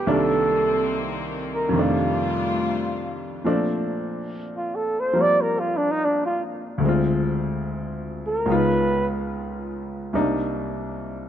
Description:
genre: jazz ballad.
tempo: 72 BPM.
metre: 4/4.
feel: swing 69% on 8ths.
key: Bb major.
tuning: A4 = 438 Hz.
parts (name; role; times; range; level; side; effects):
breathy flugelhorn; melody; 0.0-9.1 s; D4 to D5; -23 LUFS; right 1 dB; none.
clear baby grand piano; accompaniment; 0.0-11.3 s; C2 to F4; -24 LUFS; equal; none.
warm studio string section; sustained chords; 0.0-3.4 s; Eb3 to F4; -30 LUFS; left 4 dB; none.
room: moderate plate reverb, RT60 3.9 s.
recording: dark, warm production.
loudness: -21 LUFS.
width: side -10 dB against mid.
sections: 0.0-3.4 A section; 3.4-11.3 B section.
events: flugelhorn solo 3.4-11.3.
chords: 0.1 Cm7; 1.7 F13; 3.4 Bbmaj9; 6.8 Dm7b5; 8.5 Db9; 10.1 Cm7.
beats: | 0.05 0.89 1.74 2.60 | 3.45 4.29 5.13 5.96 | 6.80 7.63 8.46 9.30 | 10.13 10.96.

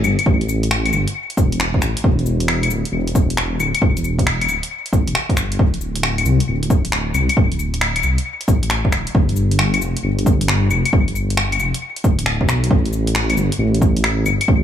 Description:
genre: future garage.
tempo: 135 BPM.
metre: 4/4.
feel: swing 66% on 16ths.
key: D dorian.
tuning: A4 = 440 Hz.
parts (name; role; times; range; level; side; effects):
dark detuned saw bass; bass; 0.0-14.6 s; D1 to C2; -19 LUFS; equal; sidechain pumping.
deep house drum kit; drums; 0.0-14.5 s; cabasa, claves, finger snaps, hi-hat; -21 LUFS; left 2 dB; overdrive, small room ambience, analog delay.
electronic kick drum; drums; 0.3-14.6 s; none; -17 LUFS; equal; overdrive, small room ambience.
room: digital ambience.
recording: echo-heavy mix.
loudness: -15 LUFS.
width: side -10 dB against mid.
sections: 0.0-14.6 A section.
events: none.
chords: none.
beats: | 0.26 0.70 1.15 1.59 | 2.04 2.48 2.93 3.37 | 3.82 4.26 4.71 5.15 | 5.59 6.04 6.48 6.93 | 7.37 7.82 8.26 8.71 | 9.15 9.59 10.04 10.48 | 10.93 11.37 11.82 12.26 | 12.71 13.15 13.59 14.04 | 14.48.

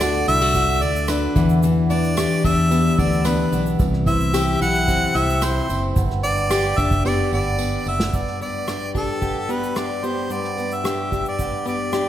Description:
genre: acoustic pop.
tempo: 111 BPM.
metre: 4/4.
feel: straight.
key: G major.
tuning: A4 = 440 Hz.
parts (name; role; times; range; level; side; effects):
clear harmonica; melody; 0.0-12.1 s; A4 to F#5; -23 LUFS; right 1 dB; none.
picked plugged-in steel-string acoustic guitar; accompaniment; 0.0-12.1 s; G2 to A4; -23 LUFS; left 3 dB; none.
flamenco guitar; arpeggios; 0.0-12.1 s; E3 to G4; -28 LUFS; right 3 dB; none.
fingered electric bass; bass; 0.0-8.1 s; F#1 to E2; -23 LUFS; equal; none.
unplugged drum kit; drums; 0.0-12.1 s; kick drum, rim click, shaker, snare drum; -25 LUFS; equal; none.
tambourine; percussion; 0.0-8.0 s; none; -39 LUFS; right 6 dB; none.
room: wet concert hall reverb, RT60 2.1 s.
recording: recorded in a church or concert hall.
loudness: -18 LUFS.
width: side -11 dB against mid.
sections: 0.0-8.1 A section; 8.1-12.1 B section.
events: drum fill 7.0-8.1.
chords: 0.0 D; 1.4 Em7; 3.8 C; 6.0 G.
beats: 0.01 0.55 1.09 | 1.63 2.17 2.71 3.25 | 3.80 4.34 4.88 5.42 | 5.96 6.51 7.05 7.59 | 8.13 8.68 9.22 9.76 | 10.30 10.85 11.39 11.93.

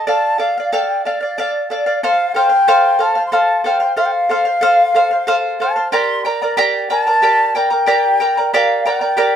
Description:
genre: andean folk, Andean ensemble.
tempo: 61 BPM (dotted quarters).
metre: 6/8.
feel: straight.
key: unclear.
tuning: A4 = 440 Hz.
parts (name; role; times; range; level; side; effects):
mellow large quena; melody; 0.0-9.4 s; D5 to C6; -16 LUFS; left 1 dB; none.
charango; accompaniment; 0.0-9.4 s; G4 to Bb5; -16 LUFS; right 1 dB; none.
room: moderate studio reverb, RT60 0.6 s.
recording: band playing live in one room.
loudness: -13 LUFS.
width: side -9 dB against mid.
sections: 0.0-2.0 A section; 2.0-9.4 B section.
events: none.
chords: 0.1 Dm; 2.0 F; 5.9 Gm.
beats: | 0.07 1.05 | 2.02 3.00 | 3.98 4.95 | 5.93 6.91 | 7.88 8.86.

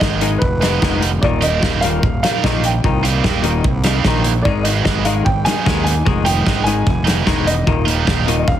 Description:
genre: indie rock.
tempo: 149 BPM.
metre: 4/4.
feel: straight.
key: Eb major.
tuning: A4 = 439 Hz.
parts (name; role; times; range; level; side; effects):
dark upright piano; melody; 0.0-8.6 s; Cb5 to Ab5; -22 LUFS; right 1 dB; slapback echo.
cranked stack guitar; riff; 0.0-8.3 s; Eb3 to Eb4; -21 LUFS; right 8 dB; overdrive, lush chorus, slapback echo.
twelve-string electric guitar; riff; 0.0-8.6 s; Eb2 to Ab3; -22 LUFS; left 8 dB; none.
fuzz fingered electric bass; bass; 0.0-8.6 s; Eb1 to Eb2; -19 LUFS; equal; overdrive.
loose indie drum kit; drums; 0.0-8.6 s; hi-hat, kick drum, snare drum; -19 LUFS; equal; none.
room: small room ambience.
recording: heavily compressed radio sound, multiband compression.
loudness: -14 LUFS.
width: side -11 dB against mid.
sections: 0.0-8.6 A section.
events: none.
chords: 0.0 Abm; 1.2 Eb; 4.4 Abm; 7.7 Eb.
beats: 0.02 0.42 0.82 | 1.23 1.63 2.03 2.44 | 2.84 3.24 3.64 4.05 | 4.45 4.85 5.25 5.66 | 6.06 6.46 6.87 7.27 | 7.67 8.07 8.48.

